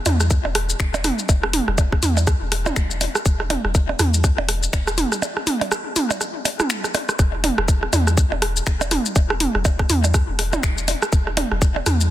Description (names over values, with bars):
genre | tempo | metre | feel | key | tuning
minimal techno | 122 BPM | 4/4 | swing 58% on 16ths | unclear | A4 = 442 Hz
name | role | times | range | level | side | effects
punchy sub bass | bass | 0.1-12.1 s | E1 to E2 | -22 LUFS | equal | sidechain pumping
garage drum kit | drums | 0.1-12.1 s | finger snaps, hi-hat, rim click, shaker | -25 LUFS | left 4 dB | soft clipping on snare
minimal click drum kit | percussion | 0.1-12.0 s | percussion blips, rim click, toms | -22 LUFS | right 3 dB | soft clipping on snare, ping-pong delay
electronic kick drum | drums | 0.3-11.7 s | none | -18 LUFS | equal | none
room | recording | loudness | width
light reverb | dense, heavily limited modern master | -17 LUFS | side -13 dB against mid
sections
0.0-7.2 A section; 7.2-12.1 B section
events
break 5.2-7.2; drum fill 6.9; drop 7.2-12.1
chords
none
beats
0.31 0.80 | 1.29 1.78 2.27 2.77 | 3.26 3.75 4.24 4.73 | 5.22 5.72 6.21 6.70 | 7.19 7.68 8.18 8.67 | 9.16 9.65 10.14 10.63 | 11.13 11.62